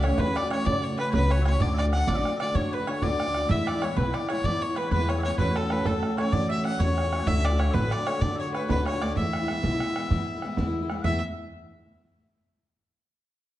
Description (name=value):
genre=celtic folk, Celtic slide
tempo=127 BPM (dotted quarters)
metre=12/8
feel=straight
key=E mixolydian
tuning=A4 = 440 Hz
part: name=bright fiddle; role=melody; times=0.0-11.2 s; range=A4 to F#5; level=-30 LUFS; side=equal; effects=none
part: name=mandolin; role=second line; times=0.0-11.2 s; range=A4 to F#5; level=-37 LUFS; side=right 2 dB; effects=none
part: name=mellow small bagpipes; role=second line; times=0.0-11.2 s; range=A4 to G#5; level=-36 LUFS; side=left 6 dB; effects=none
part: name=picked steel-string acoustic guitar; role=accompaniment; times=0.0-11.2 s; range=D2 to F#4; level=-29 LUFS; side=equal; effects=none
part: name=upright bass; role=bass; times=0.0-11.2 s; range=A1 to E3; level=-28 LUFS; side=equal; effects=none
part: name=bodhran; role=percussion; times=0.0-11.2 s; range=none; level=-31 LUFS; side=right 3 dB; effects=none
room=moderate recital hall reverb, RT60 1.5 s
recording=nothing above 10.4 kHz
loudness=-23 LUFS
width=side -14 dB against mid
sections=0.0-11.1 A section; 11.1-12.9 B section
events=none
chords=0.0 A6/C#; 1.6 D; 3.5 E; 5.4 A6/E; 7.3 D; 9.2 E